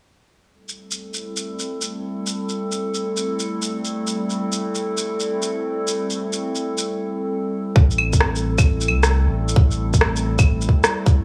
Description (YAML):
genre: future garage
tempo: 133 BPM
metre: 4/4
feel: swing 67% on 16ths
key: A minor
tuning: A4 = 441 Hz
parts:
  - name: warbly tape-like pad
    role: sustained chords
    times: 0.5-11.2 s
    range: G3 to A4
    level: -27 LUFS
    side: equal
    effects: chorus, built-in reverb, sidechain pumping
  - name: electronic shaker, claves and rim click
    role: drums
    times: 0.7-11.1 s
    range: none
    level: -25 LUFS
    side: equal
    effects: none
  - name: warm sub bass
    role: bass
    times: 7.8-10.7 s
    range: A1 to C2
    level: -23 LUFS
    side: equal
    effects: sidechain pumping
  - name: electronic kick drum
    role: drums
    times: 7.8-11.1 s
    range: none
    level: -17 LUFS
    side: equal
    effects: none
room: light reverb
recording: small room ambience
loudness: -21 LUFS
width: mono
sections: 0.5-7.8 A section; 7.8-11.2 B section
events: none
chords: 0.5 Am7